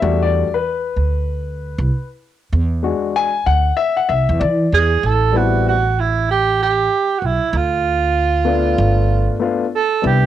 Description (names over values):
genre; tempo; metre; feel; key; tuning
hip hop, jazz-hop; 96 BPM; 4/4; swing 62% on 16ths; unclear; A4 = 439 Hz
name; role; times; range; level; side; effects
dark concert grand piano; accompaniment; 0.0-10.3 s; G3 to G#5; -19 LUFS; left 6 dB; cassette tape, plate reverb
upright bass; bass; 0.0-10.3 s; G1 to E3; -18 LUFS; right 1 dB; none
breathy alto saxophone; melody; 4.7-10.3 s; E4 to A4; -17 LUFS; right 6 dB; cassette tape
room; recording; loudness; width
moderate studio reverb, RT60 0.6 s; home recording on cassette; -15 LUFS; side -11 dB against mid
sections
0.0-5.0 A section; 5.0-10.3 B section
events
grand piano solo 0.0-5.0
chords
0.0 Em11; 2.5 E7; 5.0 Am7; 7.5 Dm; 8.8 G7